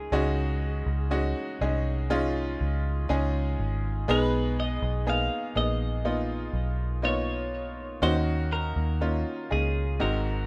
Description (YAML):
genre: pop ballad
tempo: 61 BPM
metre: 4/4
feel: straight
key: unclear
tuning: A4 = 440 Hz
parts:
  - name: twelve-string electric guitar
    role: melody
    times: 0.0-10.5 s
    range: Ab4 to F5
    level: -35 LUFS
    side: equal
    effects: plate reverb
  - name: bright upright piano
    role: accompaniment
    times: 0.0-10.5 s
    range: Ab2 to Ab4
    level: -32 LUFS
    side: equal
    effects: plate reverb
  - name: vintage muted fingered electric bass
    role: bass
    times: 0.0-10.5 s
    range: Ab1 to Eb2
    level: -30 LUFS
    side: equal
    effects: none
room: light reverb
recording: rough home demo mix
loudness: -28 LUFS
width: mono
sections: 0.0-10.5 A section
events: none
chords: 0.0 Dbsus2; 4.1 Abmadd9; 8.0 Ebm7